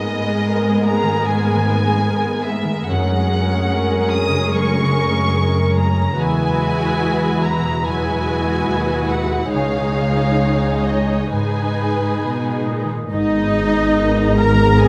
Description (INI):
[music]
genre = cinematic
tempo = 63-75 BPM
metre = 4/4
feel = rubato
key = G# minor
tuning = A4 = 439 Hz
[part]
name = warm symphonic violin section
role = melody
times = 0.0-14.9 s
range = D#5 to D#6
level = -27 LUFS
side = equal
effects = none
[part]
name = dark symphonic violin section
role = second line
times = 0.0-14.9 s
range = F#4 to A#5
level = -26 LUFS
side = equal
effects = none
[part]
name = clear symphonic viola section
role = accompaniment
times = 0.0-14.9 s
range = G#3 to A#4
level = -25 LUFS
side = equal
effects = none
[part]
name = concert harp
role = arpeggios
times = 0.0-14.9 s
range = F#2 to C#5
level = -26 LUFS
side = equal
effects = none
[part]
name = rich symphonic cello section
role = bass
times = 0.0-14.9 s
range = C#2 to B2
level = -23 LUFS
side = equal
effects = none
[part]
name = hollow small flute group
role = second line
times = 13.1-14.9 s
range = D#5 to A#5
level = -26 LUFS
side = equal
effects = none
[part]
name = dark French horn section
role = sustained chords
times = 13.1-14.9 s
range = B3 to G#4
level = -24 LUFS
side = equal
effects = none
[part]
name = rich symphonic double bass section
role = bass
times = 13.1-14.9 s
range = G#1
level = -21 LUFS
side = equal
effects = none
[sound]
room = moderate scoring stage reverb, RT60 1.9 s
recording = none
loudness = -18 LUFS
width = mono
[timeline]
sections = 0.0-13.1 A section; 13.1-14.9 A section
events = none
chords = 0.0 G#madd9; 2.9 F#add9; 6.2 Eadd9; 9.5 C#add9; 11.3 G#madd9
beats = 0.48 1.29 2.09 | 2.90 3.72 4.54 5.36 | 6.19 7.03 7.86 8.69 | 9.54 10.40 11.33 12.24 | 13.13 13.98 14.81